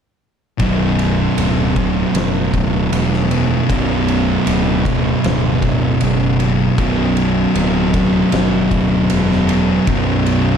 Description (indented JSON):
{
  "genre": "stoner and doom metal",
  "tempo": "78 BPM",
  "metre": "4/4",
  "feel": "straight",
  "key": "B minor",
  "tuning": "A4 = 442 Hz",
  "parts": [
    { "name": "thick fuzz guitar", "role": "riff", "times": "0.6-10.6 s", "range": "B1 to B2", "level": "-18 LUFS", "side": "left 9 dB", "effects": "distortion" },
    { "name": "thick fuzz guitar", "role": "riff", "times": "0.6-10.6 s", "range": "B1 to B2", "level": "-17 LUFS", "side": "right 7 dB", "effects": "distortion" },
    { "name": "fuzz picked electric bass", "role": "bass", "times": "0.6-10.5 s", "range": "B0 to F#1", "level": "-20 LUFS", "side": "left 1 dB", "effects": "overdrive" },
    { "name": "oversized low-tuned drum kit", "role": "drums", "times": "0.6-10.4 s", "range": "kick drum, ride cymbal, snare drum", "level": "-23 LUFS", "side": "equal", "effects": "none" }
  ],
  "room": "light reverb, studio reverb",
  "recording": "dark, warm production",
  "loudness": "-13 LUFS",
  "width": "side -7 dB against mid",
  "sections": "0.6-10.6 A section",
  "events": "none",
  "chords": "0.6 Bm",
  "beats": "| 0.60 1.38 2.15 2.92 | 3.70 4.47 5.24 6.02 | 6.79 7.56 8.34 9.11 | 9.88"
}